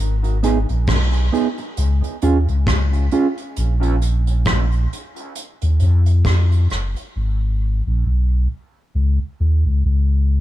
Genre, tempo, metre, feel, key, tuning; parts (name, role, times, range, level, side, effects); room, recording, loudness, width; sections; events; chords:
dub reggae; 67 BPM; 4/4; swing 57% on 16ths; G# dorian; A4 = 440 Hz
warm sub bass; bass; 0.0-10.4 s; F#1 to E#2; -16 LUFS; equal
soft brush drum kit; drums; 0.2-7.1 s; hi-hat, kick drum, rim click; -24 LUFS; equal
mellow electric guitar; accompaniment; 0.4-3.3 s; B3 to G#4; -22 LUFS; right 4 dB; dub echo
small room ambience; echo-heavy mix; -16 LUFS; side -14 dB against mid
0.0-10.4 A section
part muted 7.1-10.4
0.0 G#m; 1.8 C#; 3.6 N.C.; 7.1 G#m; 8.9 C#sus2